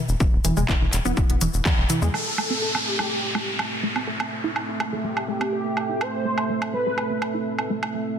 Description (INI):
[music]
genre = melodic techno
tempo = 124 BPM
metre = 4/4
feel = straight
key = A minor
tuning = A4 = 440 Hz
[part]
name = tight sequencer bass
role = bass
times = 0.1-2.1 s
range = D1 to E2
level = -24 LUFS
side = equal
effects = sidechain pumping
[part]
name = techno drum kit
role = drums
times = 0.1-7.9 s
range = handclaps, hi-hat, shaker, toms, woodblock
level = -28 LUFS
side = right 1 dB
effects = overdrive
[part]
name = tight sequenced synth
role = arpeggios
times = 0.2-8.0 s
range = E3 to A4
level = -29 LUFS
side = right 1 dB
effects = chorus, sidechain pumping, dub echo
[part]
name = electronic kick drum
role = drums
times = 0.2-1.8 s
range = none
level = -21 LUFS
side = equal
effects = overdrive
[part]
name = filtered dub chord stab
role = stabs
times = 1.1-7.2 s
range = E3 to A4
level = -38 LUFS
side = left 3 dB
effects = none
[part]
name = wide unison lead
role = melody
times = 2.1-7.4 s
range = G4 to C5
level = -28 LUFS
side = equal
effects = ensemble chorus, tape echo
[part]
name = dark analog pad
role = sustained chords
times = 2.1-8.2 s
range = A3 to E5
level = -29 LUFS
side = right 4 dB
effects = chorus, sidechain pumping
[part]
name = downlifter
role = sound effects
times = 2.1-6.0 s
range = none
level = -28 LUFS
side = equal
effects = none
[sound]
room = moderate lush hall reverb, RT60 1.6 s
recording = dense, heavily limited modern master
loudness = -21 LUFS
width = side -8 dB against mid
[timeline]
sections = 0.0-2.1 A section; 2.1-8.2 B section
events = filter sweep on synth arpeggio sound 0.0-2.1; band accent 1.7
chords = 0.0 E5; 2.1 Am